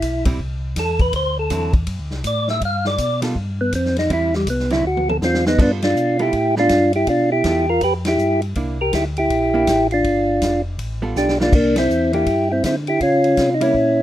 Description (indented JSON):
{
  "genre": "soul jazz organ trio",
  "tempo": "162 BPM",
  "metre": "4/4",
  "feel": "swing 63% on 8ths",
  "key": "G mixolydian",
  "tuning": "A4 = 440 Hz",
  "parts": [
    { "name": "percussive tonewheel organ", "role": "melody", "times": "0.0-14.0 s", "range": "G3 to F5", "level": "-17 LUFS", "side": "equal", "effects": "slow rotary speaker" },
    { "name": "mellow tonewheel organ", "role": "bass", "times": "0.0-14.0 s", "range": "F1 to D3", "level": "-24 LUFS", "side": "equal", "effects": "chorus vibrato, slow rotary speaker" },
    { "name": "vintage drum kit", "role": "drums", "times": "0.0-13.9 s", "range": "crash cymbal, hi-hat, kick drum, ride cymbal, snare drum, toms", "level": "-23 LUFS", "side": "equal", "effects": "none" },
    { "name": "hollow-body jazz guitar", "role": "accompaniment", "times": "0.3-13.7 s", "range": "D3 to A4", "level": "-26 LUFS", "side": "right 4 dB", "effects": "none" }
  ],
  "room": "light reverb",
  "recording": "rough home demo mix",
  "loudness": "-16 LUFS",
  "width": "side -13 dB against mid",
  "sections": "0.0-5.6 A section; 5.6-14.0 B section",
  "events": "tonewheel organ solo 0.0-5.6; drum fill 4.8-5.6, 11.2-11.5; band accent 5.8, 8.0, 11.7",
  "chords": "0.0 Am; 1.1 D9; 2.6 G7; 4.1 Cmaj9#11; 4.8 Dsus2; 5.6 G9; 8.6 C9; 10.0 G9; 11.5 C9; 13.0 C#dim7"
}